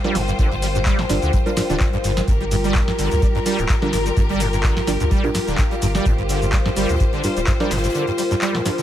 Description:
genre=acid house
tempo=127 BPM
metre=4/4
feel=swing 54% on 16ths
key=G minor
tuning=A4 = 439 Hz
part: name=clear symphonic string section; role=sustained chords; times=0.0-8.8 s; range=G3 to C5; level=-26 LUFS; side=left 3 dB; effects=sidechain pumping
part: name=acid bass, saw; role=riff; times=0.0-8.8 s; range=G1 to G3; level=-24 LUFS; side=right 1 dB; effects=ensemble chorus, tape echo
part: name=deep mellow chord stab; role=stabs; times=0.0-8.7 s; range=G3 to D5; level=-27 LUFS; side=right 3 dB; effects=chorus, cassette tape, tape echo
part: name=booming analog drum machine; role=drums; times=0.0-8.8 s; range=handclaps, hi-hat, shaker, snare drum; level=-26 LUFS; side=equal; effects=none
part: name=warbly tape-like pad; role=texture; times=0.0-8.8 s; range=F4 to G5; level=-26 LUFS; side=left 1 dB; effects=chorus, built-in reverb, sidechain pumping
part: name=saturated sub bass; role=bass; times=0.2-7.9 s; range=D1 to D2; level=-23 LUFS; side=equal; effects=tube saturation, sidechain pumping
part: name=natural country drum kit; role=drums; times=0.2-8.8 s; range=hi-hat, snare drum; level=-39 LUFS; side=left 2 dB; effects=none
part: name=electronic kick drum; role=drums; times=0.4-7.6 s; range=none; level=-20 LUFS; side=equal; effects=none
room=light reverb, studio ambience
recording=none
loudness=-17 LUFS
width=side -11 dB against mid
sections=0.0-8.8 A section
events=none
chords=0.0 Gm7

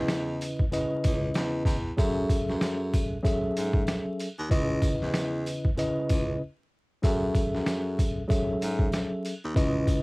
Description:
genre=hip hop, boom-bap hip-hop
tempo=95 BPM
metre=4/4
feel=swing 59% on 16ths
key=unclear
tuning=A4 = 442 Hz
part: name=mellow tine electric piano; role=accompaniment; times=0.0-10.0 s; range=C#3 to E5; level=-28 LUFS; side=equal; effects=medium stereo tremolo, cassette tape, high-pass filter, low-pass filter
part: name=bright baritone saxophone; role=bass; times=0.0-10.0 s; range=C#2 to G#2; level=-33 LUFS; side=equal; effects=none
part: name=trip hop sampler-style drum kit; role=drums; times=0.1-10.0 s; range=hi-hat, kick drum, snare drum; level=-27 LUFS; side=equal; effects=cassette tape
part: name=sleigh bells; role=percussion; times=0.1-10.0 s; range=none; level=-45 LUFS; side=right 1 dB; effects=none
room=little or no reverb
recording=home recording on cassette, vinyl crackle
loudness=-25 LUFS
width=side -26 dB against mid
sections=0.0-10.0 A section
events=break 6.4-7.0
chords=0.0 C#m7; 2.0 F#m9; 4.5 C#m7; 7.0 F#m9

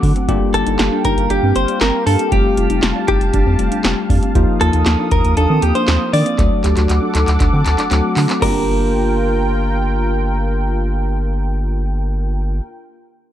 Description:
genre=synth-pop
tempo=118 BPM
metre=4/4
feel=straight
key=G minor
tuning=A4 = 440 Hz
part: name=bell-like tine electric piano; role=accompaniment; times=0.0-12.6 s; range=F3 to A5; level=-22 LUFS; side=left 5 dB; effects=none
part: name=warm analog pad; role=sustained chords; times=0.0-12.6 s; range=Bb3 to Eb6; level=-24 LUFS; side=equal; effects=chorus
part: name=soft round pluck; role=arpeggios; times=0.0-12.7 s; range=G3 to A4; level=-24 LUFS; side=right 5 dB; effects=chorus, analog delay
part: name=round analog bass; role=bass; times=0.0-12.6 s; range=F1 to Eb3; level=-17 LUFS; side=equal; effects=none
part: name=electro analog drum machine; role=drums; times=0.0-8.5 s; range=crash cymbal, handclaps, hi-hat, kick drum, snare drum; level=-19 LUFS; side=equal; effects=none
part: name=direct-recorded clean electric guitar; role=melody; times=0.5-12.6 s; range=G4 to D5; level=-20 LUFS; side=right 1 dB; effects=wide subtle chorus
room=light reverb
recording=dark, warm production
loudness=-14 LUFS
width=side -11 dB against mid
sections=0.0-8.4 A section; 8.4-12.5 B section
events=drum fill 6.4-8.4; tine electric piano fill 7.4-8.4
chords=0.3 Gm7; 2.3 Fadd9; 4.4 Ebsus2; 6.4 D; 8.4 Gm7

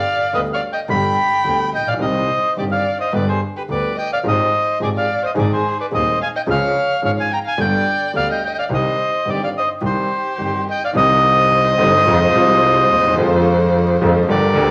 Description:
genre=tango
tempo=108 BPM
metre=4/4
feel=rubato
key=C harmonic minor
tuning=A4 = 441 Hz
part: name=bandoneon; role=melody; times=0.0-14.7 s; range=B4 to B5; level=-20 LUFS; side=equal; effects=none
part: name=warm violin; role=second line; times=0.0-14.7 s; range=G4 to G5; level=-26 LUFS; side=equal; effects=none
part: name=warm grand piano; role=accompaniment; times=0.3-14.7 s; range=Eb1 to Ab4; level=-24 LUFS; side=equal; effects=none
part: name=clear double bass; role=bass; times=0.3-14.7 s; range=G1 to F2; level=-24 LUFS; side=equal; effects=none
room=wet large studio reverb, RT60 0.9 s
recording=vinyl crackle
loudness=-17 LUFS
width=mono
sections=0.0-11.0 A section; 11.0-14.7 B section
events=none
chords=0.0 G; 2.0 Cm; 3.1 G; 4.3 Fmadd9/Ab; 5.4 Ab; 6.5 Db; 7.6 G; 8.7 Cm; 11.0 Cmadd9; 12.1 Fm; 13.2 Ddim/F

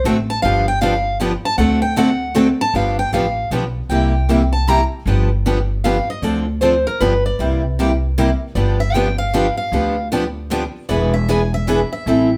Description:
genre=acoustic string swing (jazz manouche)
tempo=155 BPM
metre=3/4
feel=swing 64% on 8ths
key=G mixolydian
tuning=A4 = 439 Hz
part: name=picked steel-string acoustic guitar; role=second line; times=0.0-12.4 s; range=Bb4 to Bb5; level=-23 LUFS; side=equal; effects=none
part: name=upright bass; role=bass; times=0.0-12.4 s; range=E1 to D2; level=-22 LUFS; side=equal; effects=none
part: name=picked steel-string acoustic guitar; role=accompaniment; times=0.1-12.3 s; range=C3 to A4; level=-23 LUFS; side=equal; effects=none
part: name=picked steel-string acoustic guitar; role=accompaniment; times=0.1-12.3 s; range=C3 to B4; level=-24 LUFS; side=equal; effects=none
room=moderate large studio reverb, RT60 0.8 s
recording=band playing live in one room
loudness=-18 LUFS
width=mono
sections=0.0-2.7 A section; 2.7-12.4 A section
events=steel-string acoustic guitar solo 0.0-12.4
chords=0.4 G7; 1.6 D7; 2.7 G7; 3.9 C7; 5.1 G7; 6.2 Dm7; 7.0 G7; 7.4 C7; 8.6 G7; 10.9 E7

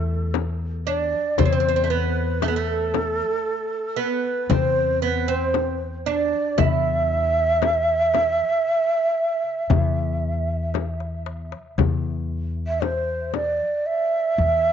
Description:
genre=Arabic maqam ensemble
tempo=115 BPM (eighths)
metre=10/8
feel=straight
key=E maqam bayati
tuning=A4 = 440 Hz
part: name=breathy mellow ney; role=melody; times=0.0-14.7 s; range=A4 to E5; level=-22 LUFS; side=right 1 dB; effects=tape echo
part: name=oud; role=second line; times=0.0-10.7 s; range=A3 to E4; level=-27 LUFS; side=right 10 dB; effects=none
part: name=upright bass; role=bass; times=0.0-14.7 s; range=E2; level=-25 LUFS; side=left 1 dB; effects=none
part: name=frame drum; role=percussion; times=0.3-13.6 s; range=none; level=-26 LUFS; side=left 14 dB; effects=none
part: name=darbuka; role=percussion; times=0.4-14.7 s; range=none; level=-28 LUFS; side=left 10 dB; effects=none
room=wet spring reverb, RT60 1.3 s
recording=1960s-style stereo with parts hard left and right, nothing above 7.6 kHz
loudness=-20 LUFS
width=side -8 dB against mid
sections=0.0-11.8 A section; 11.8-14.7 B section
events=drum fill 10.7-11.8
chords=none

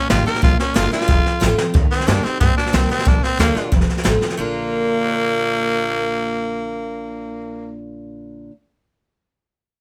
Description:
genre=rockabilly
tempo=182 BPM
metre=4/4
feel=straight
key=Bb major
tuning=A4 = 436 Hz
part: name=growling tenor saxophone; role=melody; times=0.0-7.8 s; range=Bb3 to Bb4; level=-23 LUFS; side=equal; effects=none
part: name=picked steel-string acoustic guitar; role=accompaniment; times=0.0-8.5 s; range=F2 to G4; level=-26 LUFS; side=equal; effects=none
part: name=upright bass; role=bass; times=0.1-8.5 s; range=F1 to G2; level=-25 LUFS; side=equal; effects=none
part: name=jazz brush drum kit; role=drums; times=0.1-4.3 s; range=hi-hat, kick drum, snare drum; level=-20 LUFS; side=equal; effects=none
room=light reverb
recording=none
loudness=-18 LUFS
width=mono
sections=0.0-1.7 A section; 1.7-4.4 B section; 4.4-7.0 C section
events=drum fill 1.4-1.7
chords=0.4 Bb; 1.1 F; 1.7 Eb; 3.1 Bb; 3.7 F; 4.4 Bb

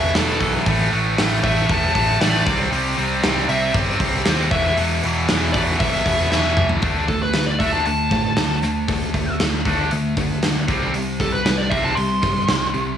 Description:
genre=hard rock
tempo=117 BPM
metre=4/4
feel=straight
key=unclear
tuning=A4 = 441 Hz
part: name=dark smooth lead guitar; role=melody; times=0.0-13.0 s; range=A4 to C6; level=-24 LUFS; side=equal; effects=overdrive, cassette tape, analog delay
part: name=heavy high-gain guitar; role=riff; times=0.0-13.0 s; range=E2 to D4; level=-21 LUFS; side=equal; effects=distortion, cassette tape
part: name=picked electric bass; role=bass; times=0.0-13.0 s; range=E1 to A2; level=-24 LUFS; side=equal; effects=none
part: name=gated 80s drum kit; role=drums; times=0.1-12.9 s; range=hi-hat, kick drum, snare drum, toms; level=-22 LUFS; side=equal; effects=cassette tape
room=light reverb, small room ambience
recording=home recording on cassette, studio ambience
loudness=-17 LUFS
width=side -9 dB against mid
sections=0.0-6.8 A section; 6.8-13.0 B section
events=drum fill 6.3-6.8; lead electric guitar solo 6.8-13.0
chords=0.0 E5; 0.7 A5; 2.5 C5; 4.5 E5; 6.8 D5; 10.7 C5

